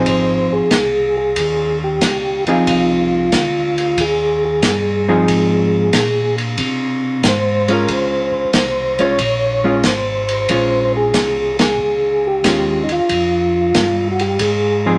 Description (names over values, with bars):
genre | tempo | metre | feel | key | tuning
soul jazz organ trio | 92 BPM | 4/4 | swing 69% on 8ths | F minor | A4 = 439 Hz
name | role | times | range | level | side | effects
percussive tonewheel organ | melody | 0.0-15.0 s | Eb4 to Db5 | -19 LUFS | equal | slow rotary speaker, chorus vibrato
hollow-body jazz guitar | accompaniment | 0.0-15.0 s | F3 to Ab4 | -19 LUFS | equal | none
mellow tonewheel organ | bass | 0.0-15.0 s | Ab1 to C3 | -26 LUFS | equal | chorus vibrato, slow rotary speaker
vintage drum kit | drums | 0.1-14.6 s | hi-hat, kick drum, ride cymbal, snare drum | -22 LUFS | equal | none
room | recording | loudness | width
moderate studio ambience, RT60 0.5 s | none | -16 LUFS | mono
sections
0.0-15.0 A section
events
band accent 11.5-11.8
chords
0.0 Fm7; 7.9 Bbm7; 13.1 Fm